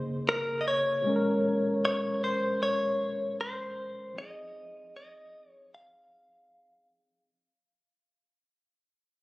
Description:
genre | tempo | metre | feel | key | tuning
R&B | 77 BPM | 4/4 | straight | unclear | A4 = 439 Hz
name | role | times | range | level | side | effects
tine electric piano | accompaniment | 0.0-7.3 s | Bb2 to Bb4 | -31 LUFS | equal | medium stereo tremolo
direct-recorded clean electric guitar | melody | 0.3-6.9 s | Bb4 to F5 | -29 LUFS | left 1 dB | none
room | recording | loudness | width
light reverb | recorded on a phone in the room, studio reverb, compression | -26 LUFS | side -20 dB against mid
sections
0.0-7.3 A section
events
fade-out 0.0-7.3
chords
0.0 Dbsus2; 1.1 Bbm9; 4.2 Fm7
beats
0.28 | 1.05 1.83 2.61 3.39 | 4.17 4.95 5.73 6.51

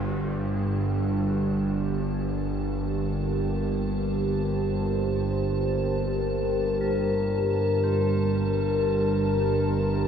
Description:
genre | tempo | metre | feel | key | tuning
dark ambient drone | free time | none | none | G minor | A4 = 440 Hz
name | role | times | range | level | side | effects
deep dark ambient pad | sustained chords | 1.6-10.1 s | G4 to D5 | -27 LUFS | left 1 dB | chorus, built-in reverb
tubular bells | arpeggios | 0.0-10.1 s | F4 to C5 | -47 LUFS | left 2 dB | analog delay
bowed-like drone | drone | 0.0-10.1 s | G1 to G2 | -25 LUFS | right 1 dB | built-in reverb
icy glass pad | texture | 0.5-10.1 s | A5 | -42 LUFS | right 2 dB | chorus, built-in reverb
room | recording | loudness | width
wet spring reverb, RT60 2.4 s | echo-heavy mix | -23 LUFS | side -8 dB against mid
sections
0.0-10.1 A section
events
fade-in on ambient pad 0.0-10.1; fade-in on tubular bells 0.0-10.1; filter sweep on synth drone 0.0-10.1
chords
0.0 Gm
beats
free time

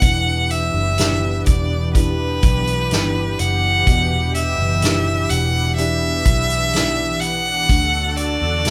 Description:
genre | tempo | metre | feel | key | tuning
pop ballad | 63 BPM | 4/4 | straight | unclear | A4 = 440 Hz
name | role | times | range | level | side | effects
clear violin | melody | 0.0-8.7 s | B4 to F#5 | -22 LUFS | equal | none
dark upright piano | accompaniment | 0.0-8.7 s | B2 to A4 | -29 LUFS | equal | none
lush unison pad | sustained chords | 0.0-8.7 s | D3 to A4 | -29 LUFS | equal | chorus
vintage muted fingered electric bass | bass | 0.0-8.7 s | E1 to E2 | -24 LUFS | equal | none
soft-mallet drum kit | drums | 0.0-8.7 s | hi-hat, kick drum, snare drum | -21 LUFS | equal | none
room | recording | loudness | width
moderate studio ambience, RT60 0.5 s | band playing live in one room | -18 LUFS | mono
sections
0.0-8.7 A section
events
none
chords
0.0 Em7; 7.7 D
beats
| 0.02 0.99 1.95 2.92 | 3.87 4.83 5.78 6.74 | 7.70 8.65

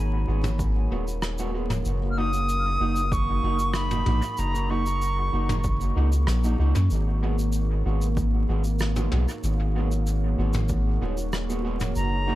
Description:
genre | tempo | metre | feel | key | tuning
ambient dub | 95 BPM | 4/4 | straight | G# minor | A4 = 440 Hz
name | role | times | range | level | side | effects
deep dark ambient pad | sustained chords | 0.0-12.4 s | A#3 to F#5 | -33 LUFS | right 1 dB | chorus, built-in reverb
soft dub sub bass | bass | 0.0-12.4 s | D#1 to F#2 | -24 LUFS | equal | none
mellow electric guitar | stabs | 0.3-12.4 s | G#3 to F#4 | -34 LUFS | right 2 dB | dub echo
soft brush drum kit | drums | 0.4-12.1 s | rim click, shaker, toms | -33 LUFS | equal | dub echo
electronic kick drum | drums | 0.6-10.8 s | none | -29 LUFS | equal | none
bright reedy silver concert flute | melody | 2.1-5.6, 12.0-12.4 s | A#5 to E#6 | -29 LUFS | equal | dub echo
room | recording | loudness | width
small room ambience | echo-heavy mix, vinyl crackle | -22 LUFS | side -15 dB against mid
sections
0.0-12.4 A section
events
none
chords
0.0 G#m7; 1.9 F#6; 6.9 G#m7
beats
0.59 1.22 | 1.85 2.49 3.12 3.75 | 4.38 5.01 5.64 6.28 | 6.91 7.54 8.17 8.80 | 9.43 10.07 10.70 11.33 | 11.96

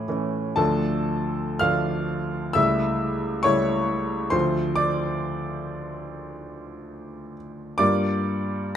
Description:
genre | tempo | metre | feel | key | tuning
classical, romantic character piece for solo piano | 55-71 BPM | 4/4 | rubato | D minor | A4 = 439 Hz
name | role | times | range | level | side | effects
clear baby grand piano | solo | 0.0-8.8 s | C#2 to F6 | -23 LUFS | equal | none
room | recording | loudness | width
light reverb | close, detailed microphones | -22 LUFS | side -9 dB against mid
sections
0.6-8.8 A section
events
none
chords
0.0 A; 0.6 Dm; 2.6 A7/C#; 4.3 Dm; 7.8 Gm7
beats
| 0.59 1.63 2.57 3.47 | 4.34 5.22 6.09 6.95 | 7.81

